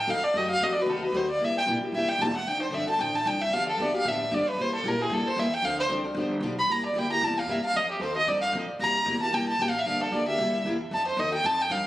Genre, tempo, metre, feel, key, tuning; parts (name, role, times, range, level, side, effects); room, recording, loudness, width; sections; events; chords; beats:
acoustic string swing (jazz manouche); 227 BPM; 4/4; swing 55% on 8ths; C mixolydian; A4 = 445 Hz
warm violin; melody; 0.0-11.9 s; G4 to B5; -25 LUFS; equal; plate reverb, tape echo
upright bass; bass; 0.0-11.9 s; E1 to C3; -37 LUFS; right 1 dB
picked steel-string acoustic guitar; accompaniment; 0.1-11.8 s; C3 to A4; -30 LUFS; left 2 dB
moderate club reverb, RT60 0.7 s; recorded on a phone in the room, studio reverb; -24 LUFS; side -15 dB against mid
0.0-6.7 A section; 6.7-11.9 A section
violin solo 0.0-11.9
0.3 F#dim7; 1.4 C7; 2.5 Dm7; 3.5 G7; 4.6 C7; 5.6 Dm7; 6.2 G7; 6.7 C7; 7.7 F7; 8.8 C7; 9.9 Gm7; 10.4 C7; 10.9 F7
0.08 | 0.34 0.61 0.88 1.14 | 1.41 1.67 1.94 2.20 | 2.46 2.73 2.99 3.26 | 3.52 3.79 4.05 4.31 | 4.58 4.84 5.11 5.37 | 5.63 5.90 6.16 6.43 | 6.69 6.95 7.22 7.48 | 7.75 8.01 8.27 8.54 | 8.80 9.07 9.33 9.60 | 9.86 10.12 10.39 10.65 | 10.91 11.18 11.44 11.71